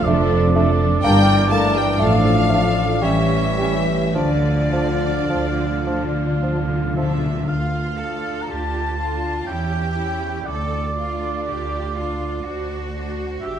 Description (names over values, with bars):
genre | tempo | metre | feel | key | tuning
classical, slow romantic movement for symphony orchestra | 51-63 BPM | 3/4 | rubato | D minor | A4 = 441 Hz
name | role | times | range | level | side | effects
rich symphonic violin section | melody | 0.0-13.4 s | G4 to A5 | -30 LUFS | left 1 dB | none
mellow oboe | second line | 0.0-13.6 s | C#5 to Bb5 | -27 LUFS | right 1 dB | none
silver concert flute | second line | 0.0-6.4 s | D5 to A5 | -27 LUFS | left 4 dB | none
warm symphonic violin section | second line | 0.0-13.6 s | D5 to A5 | -32 LUFS | left 3 dB | none
rich symphonic viola section | accompaniment | 0.0-13.4 s | C#4 to Bb4 | -28 LUFS | equal | none
mellow French horn section | sustained chords | 0.0-6.4 s | D3 to A3 | -24 LUFS | left 4 dB | none
warm trombone section | sustained chords | 0.0-7.2 s | E3 to D4 | -26 LUFS | right 3 dB | none
mellow clarinet | second line | 0.1-7.1 s | C#4 to D4 | -30 LUFS | left 2 dB | none
warm bassoon | accompaniment | 0.1-7.1 s | F3 to Bb3 | -27 LUFS | right 1 dB | none
rich studio cello section | bass | 0.1-13.6 s | F2 to A4 | -26 LUFS | right 2 dB | none
rich symphonic double bass section | bass | 0.1-13.6 s | F1 to E2 | -24 LUFS | right 2 dB | none
timpani | percussion | 4.2-11.9 s | D3 | -27 LUFS | left 2 dB | none
room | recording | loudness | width
moderate concert hall reverb, RT60 1.9 s | none | -18 LUFS | side -9 dB against mid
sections
0.0-7.5 A section; 7.5-13.6 B section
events
timpani fill 4.2-7.5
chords
0.1 Dm/F; 1.0 Em7b5/G; 2.0 Dm/A; 3.0 A7; 4.2 Dm; 9.5 C#dim/E; 10.5 Dm; 12.4 D7